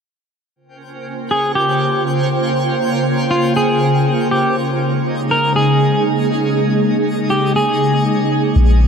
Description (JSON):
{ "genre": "hip hop", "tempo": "120 BPM", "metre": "4/4", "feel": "half-time", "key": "Bb dorian", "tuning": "A4 = 440 Hz", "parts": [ { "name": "ethereal airy pad", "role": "sustained chords", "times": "1.0-8.9 s", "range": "Db3 to G5", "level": "-16 LUFS", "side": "equal", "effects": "ensemble chorus, built-in reverb" }, { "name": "twinkling granular texture", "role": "texture", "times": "0.7-8.9 s", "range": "Db4 to G5", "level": "-26 LUFS", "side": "right 1 dB", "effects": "built-in reverb" }, { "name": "electric guitar at the edge of break-up", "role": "melody", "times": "1.3-8.0 s", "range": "F4 to Bb4", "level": "-18 LUFS", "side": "equal", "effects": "low-pass filter, ping-pong delay" }, { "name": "soft 808-style bass", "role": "bass", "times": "8.6-8.9 s", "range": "Bb1", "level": "-10 LUFS", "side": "equal", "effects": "none" } ], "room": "moderate lush hall reverb, RT60 2.8 s", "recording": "none", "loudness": "-14 LUFS", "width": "side -6 dB against mid", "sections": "0.6-8.6 A section", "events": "none", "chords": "0.6 Bbm69; 4.6 Eb7sus4", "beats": "| 0.56 1.06 1.56 2.06 | 2.56 3.06 3.56 4.06 | 4.56 5.06 5.56 6.06 | 6.56 7.06 7.56 8.06 | 8.56" }